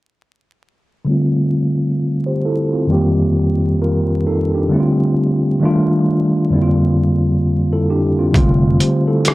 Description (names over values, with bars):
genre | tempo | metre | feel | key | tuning
lo-fi hip hop | 66 BPM | 4/4 | swing 61% on 16ths | F major | A4 = 439 Hz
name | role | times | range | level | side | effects
mellow tine electric piano | accompaniment | 1.0-9.3 s | F2 to C5 | -14 LUFS | equal | medium stereo tremolo, cassette tape, low-pass filter
upright bass | bass | 8.3-8.8 s | F1 | -16 LUFS | equal | none
dusty soul sampler-style drum kit | drums | 8.3-9.3 s | hi-hat, kick drum, rim click | -15 LUFS | equal | none
room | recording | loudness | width
moderate studio reverb, RT60 0.6 s | dry, gritty hardware recording, vinyl crackle | -14 LUFS | side -19 dB against mid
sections
1.1-8.3 A section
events
filter sweep on tine electric piano 1.1-8.3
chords
1.1 F69; 2.9 Eb6/F; 4.7 F69; 5.6 F13; 6.5 Bb69/F; 8.3 F69